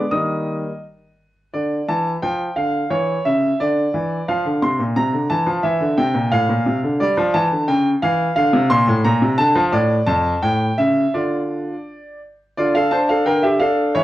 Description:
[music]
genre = classical-period piano sonatina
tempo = 87 BPM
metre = 2/4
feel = straight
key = D minor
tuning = A4 = 442 Hz
[part]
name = bright concert grand piano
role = solo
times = 0.0-14.0 s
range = F2 to Eb6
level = -16 LUFS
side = equal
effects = none
[sound]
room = light reverb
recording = worn, warbling old tape, cassette tape, warbly pitch drift, faint mains hum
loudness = -16 LUFS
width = side -15 dB against mid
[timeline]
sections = 0.0-1.5 A section; 1.5-12.6 B section; 12.6-14.0 B section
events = none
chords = 0.1 Eb; 1.5 Dm; 2.9 C#m; 3.6 Dsus2; 4.3 F5; 5.6 C7; 6.3 F/A; 7.0 G5; 7.7 C#dim; 8.4 Dm; 9.0 Bbmaj9; 9.7 Dm/A; 10.4 A7; 11.1 Dm

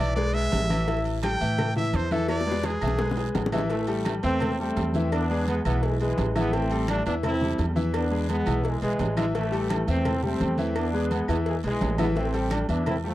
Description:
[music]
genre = latin, salsa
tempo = 170 BPM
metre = 4/4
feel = straight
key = A minor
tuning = A4 = 440 Hz
[part]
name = bright trumpet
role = melody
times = 0.0-3.3 s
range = G#4 to G5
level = -30 LUFS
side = right 1 dB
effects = slapback echo
[part]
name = bright grand piano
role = accompaniment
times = 0.0-13.1 s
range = E3 to E5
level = -29 LUFS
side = left 2 dB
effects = none
[part]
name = upright bass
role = bass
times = 0.0-13.1 s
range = A1 to A2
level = -28 LUFS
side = right 1 dB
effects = none
[part]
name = congas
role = percussion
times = 0.2-13.1 s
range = none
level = -33 LUFS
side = equal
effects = none
[part]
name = cowbell and bongos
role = percussion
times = 0.2-13.0 s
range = none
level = -34 LUFS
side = left 4 dB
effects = none
[part]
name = guiro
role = percussion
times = 0.2-13.1 s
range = none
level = -47 LUFS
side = right 16 dB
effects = none
[part]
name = agogo bells and timbales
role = percussion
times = 0.3-13.0 s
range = none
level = -36 LUFS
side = right 7 dB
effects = none
[part]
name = claves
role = percussion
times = 0.7-13.0 s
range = none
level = -43 LUFS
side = left 6 dB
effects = none
[part]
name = brilliant trombone section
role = melody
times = 3.5-13.1 s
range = E3 to E4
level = -28 LUFS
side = equal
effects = none
[sound]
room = light reverb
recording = dry, close 1970s-style studio recording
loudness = -23 LUFS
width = side -15 dB against mid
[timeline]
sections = 0.0-3.7 A section; 3.7-13.1 B section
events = trumpet solo 0.0-3.7; drum fill 2.3-3.7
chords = 0.0 E; 0.9 A5; 2.3 E7; 3.7 Am7; 5.1 E7; 6.5 Am7; 7.9 E7; 9.4 Am7; 10.8 E7; 12.2 Am7

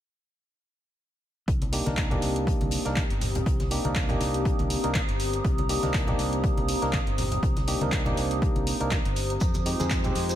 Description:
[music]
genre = deep house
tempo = 121 BPM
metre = 4/4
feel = swing 55% on 16ths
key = C minor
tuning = A4 = 439 Hz
[part]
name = warbly tape-like pad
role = sustained chords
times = 2.2-10.4 s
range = F4 to Eb6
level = -35 LUFS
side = right 1 dB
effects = chorus, built-in reverb, sidechain pumping
[part]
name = modern bright fingered electric bass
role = bass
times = 1.5-10.4 s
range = G1 to F2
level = -31 LUFS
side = equal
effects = none
[part]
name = electronic kick drum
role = drums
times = 1.5-10.0 s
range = none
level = -27 LUFS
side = equal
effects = overdrive
[part]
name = open jazz drum kit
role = drums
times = 1.5-10.3 s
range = hi-hat, snare drum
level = -44 LUFS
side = left 4 dB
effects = none
[part]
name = airy breathy pad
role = texture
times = 1.5-10.4 s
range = C4 to C5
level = -35 LUFS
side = equal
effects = chorus, sidechain pumping
[part]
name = punchy analog drum machine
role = drums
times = 1.6-10.4 s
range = handclaps, hi-hat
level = -33 LUFS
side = right 1 dB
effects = none
[part]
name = congas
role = percussion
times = 1.6-10.1 s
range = none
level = -34 LUFS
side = left 1 dB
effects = none
[part]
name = barky tine electric piano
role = stabs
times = 1.7-10.4 s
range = Ab3 to Bb4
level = -31 LUFS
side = equal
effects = overdrive, vintage 12-bit sampler grit, sidechain pumping, ping-pong delay
[part]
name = shekere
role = percussion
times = 9.4-10.4 s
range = none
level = -38 LUFS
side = right 2 dB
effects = none
[sound]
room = light reverb, small room ambience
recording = none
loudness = -24 LUFS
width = side -12 dB against mid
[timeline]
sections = 1.5-10.4 A section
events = none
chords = 1.5 Cm7; 9.4 Fm7

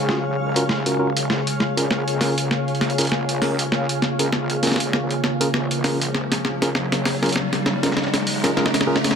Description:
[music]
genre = glitch hop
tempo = 99 BPM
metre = 4/4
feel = swing 57% on 16ths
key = Bb minor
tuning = A4 = 440 Hz
[part]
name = warbly tape-like pad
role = sustained chords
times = 0.0-9.2 s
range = Db3 to F4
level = -26 LUFS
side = equal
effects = chorus, built-in reverb
[part]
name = wobble bass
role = bass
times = 0.0-9.2 s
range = Eb1 to Eb2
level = -33 LUFS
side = equal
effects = chorus, overdrive, high-pass filter
[part]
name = granular cloud pad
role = texture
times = 0.0-9.2 s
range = Ab4 to F5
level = -27 LUFS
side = left 1 dB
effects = built-in reverb
[part]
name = mellow tine electric piano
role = stabs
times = 0.1-9.0 s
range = Db4 to Bb4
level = -26 LUFS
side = equal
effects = ping-pong delay
[part]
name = boom bap sampler-style drum kit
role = drums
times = 0.1-9.2 s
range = hi-hat, snare drum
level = -22 LUFS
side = equal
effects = none
[part]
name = riser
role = sound effects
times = 4.1-9.2 s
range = none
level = -29 LUFS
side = equal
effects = none
[sound]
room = light reverb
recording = none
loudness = -19 LUFS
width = side -7 dB against mid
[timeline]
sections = 0.0-9.2 A section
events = build-up 0.0-9.2; drum fill 0.0-9.2; filter sweep on ambient pad 0.0-9.2; riser 4.1-9.2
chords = 0.0 Ebm7; 1.3 Bbm7; 6.1 Ebm7

